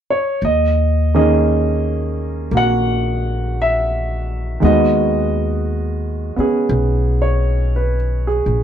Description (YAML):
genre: jazz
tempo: 57 BPM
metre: 4/4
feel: swing 68% on 8ths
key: unclear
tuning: A4 = 437 Hz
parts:
  - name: warm concert grand piano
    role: accompaniment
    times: 0.1-8.6 s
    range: D#3 to F#5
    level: -17 LUFS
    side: right 1 dB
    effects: none
  - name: upright bass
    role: bass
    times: 0.4-8.6 s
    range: A#1 to D#2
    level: -18 LUFS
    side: left 1 dB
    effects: none
room: light reverb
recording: none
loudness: -15 LUFS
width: side -9 dB against mid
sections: 0.4-8.6 A section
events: none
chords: 0.4 D#7sus4; 4.6 G#m7/D#